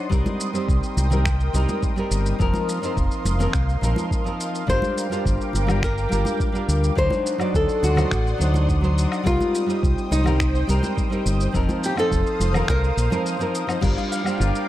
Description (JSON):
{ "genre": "sunset chillout", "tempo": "105 BPM", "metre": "4/4", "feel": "straight", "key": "G minor", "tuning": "A4 = 441 Hz", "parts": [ { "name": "nylon-string guitar", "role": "accompaniment", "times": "0.0-14.7 s", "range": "F3 to D5", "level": "-26 LUFS", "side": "moving between left 3 dB and right 3 dB", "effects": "auto-pan, ping-pong delay" }, { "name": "lush unison pad", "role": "sustained chords", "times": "0.0-14.7 s", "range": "Bb4 to Eb6", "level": "-30 LUFS", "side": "equal", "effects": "chorus, phaser" }, { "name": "fingered electric bass", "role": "bass", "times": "0.1-14.5 s", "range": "F1 to D2", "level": "-21 LUFS", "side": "equal", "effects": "none" }, { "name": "dusty soul sampler-style drum kit", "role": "drums", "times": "0.1-14.7 s", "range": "crash cymbal, finger snaps, shaker, woodblock", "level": "-32 LUFS", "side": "left 1 dB", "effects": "none" }, { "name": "electronic kick drum", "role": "drums", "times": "0.1-13.9 s", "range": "none", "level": "-25 LUFS", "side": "equal", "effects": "none" }, { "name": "congas", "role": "percussion", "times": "0.3-13.2 s", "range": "none", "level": "-31 LUFS", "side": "right 1 dB", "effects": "none" }, { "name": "flamenco guitar", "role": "melody", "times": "4.7-13.2 s", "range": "Eb4 to C5", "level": "-25 LUFS", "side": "left 1 dB", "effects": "ping-pong delay" }, { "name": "concert harp", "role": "arpeggios", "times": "14.0-14.7 s", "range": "F4 to F5", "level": "-29 LUFS", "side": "left 4 dB", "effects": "ping-pong delay" } ], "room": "light reverb, small room ambience", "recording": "dark, warm production", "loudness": "-19 LUFS", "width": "side -14 dB against mid", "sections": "0.0-13.8 A section", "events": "break 13.3-13.8", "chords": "0.1 Cm7; 2.4 F7sus4; 4.7 Gm7; 7.0 D7b9; 9.3 Cm7; 11.5 F7sus4; 13.8 Gm7" }